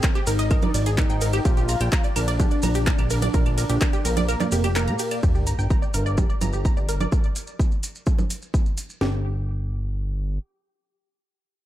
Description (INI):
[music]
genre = melodic techno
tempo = 127 BPM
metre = 4/4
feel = straight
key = unclear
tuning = A4 = 440 Hz
[part]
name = fat analog lead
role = melody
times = 0.0-5.2 s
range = Bb3 to F4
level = -28 LUFS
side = equal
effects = ensemble chorus, sidechain pumping, analog delay
[part]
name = wide unison pluck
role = arpeggios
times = 0.0-9.2 s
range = G4 to Bb5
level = -29 LUFS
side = right 1 dB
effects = sidechain pumping, analog delay
[part]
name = deep house drum kit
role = drums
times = 0.0-8.9 s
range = claves, congas, handclaps, hi-hat, ride cymbal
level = -29 LUFS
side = right 3 dB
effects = sidechain pumping on hats, sidechain pumping on perc, sidechain pumping on cymbals
[part]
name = house drum kit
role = drums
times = 0.0-9.1 s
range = kick drum, snare drum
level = -21 LUFS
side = equal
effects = overdrive
[part]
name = maracas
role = percussion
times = 0.0-9.0 s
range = none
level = -37 LUFS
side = right 2 dB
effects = none
[part]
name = fat analog bass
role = bass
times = 0.3-10.4 s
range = F1 to Bb2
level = -24 LUFS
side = equal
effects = sidechain pumping
[part]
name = sub drop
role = sound effects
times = 5.2-7.1 s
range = none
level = -30 LUFS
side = equal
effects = none
[sound]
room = little or no reverb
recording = none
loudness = -20 LUFS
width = side -13 dB against mid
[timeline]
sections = 0.0-5.2 A section; 5.2-9.0 B section; 9.0-11.7 C section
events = drop 0.0-5.2; kick drops out 4.3-5.2; impact 5.2-7.1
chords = 0.0 Ab; 1.5 Bb6; 5.2 N.C.